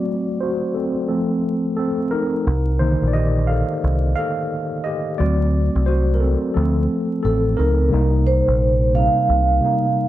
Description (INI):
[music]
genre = lo-fi hip hop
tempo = 88 BPM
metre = 4/4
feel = swing 62% on 16ths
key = C dorian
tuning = A4 = 440 Hz
[part]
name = mellow tine electric piano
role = accompaniment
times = 0.0-10.1 s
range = C3 to F5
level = -20 LUFS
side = equal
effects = overdrive, medium stereo tremolo, cassette tape, low-pass filter
[part]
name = deep dub picked electric bass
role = bass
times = 2.5-9.6 s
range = A1 to D2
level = -18 LUFS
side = equal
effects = none
[part]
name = vibraphone with soft mallets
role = melody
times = 7.2-10.1 s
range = A4 to F5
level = -20 LUFS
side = right 2 dB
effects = none
[sound]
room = moderate studio reverb, RT60 0.6 s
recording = dark, warm production, vinyl crackle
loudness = -17 LUFS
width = side -14 dB against mid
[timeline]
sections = 0.0-7.9 A section; 7.9-10.1 B section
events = tine electric piano solo 0.0-7.9; filter sweep on tine electric piano 0.0-7.9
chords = 0.0 D7; 1.1 Fadd11; 2.5 Cm7; 5.2 D7; 6.6 Bbmaj9; 7.9 Cm7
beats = 0.42 1.10 1.78 | 2.46 3.14 3.83 4.51 | 5.19 5.87 6.55 7.23 | 7.92 8.60 9.28 9.96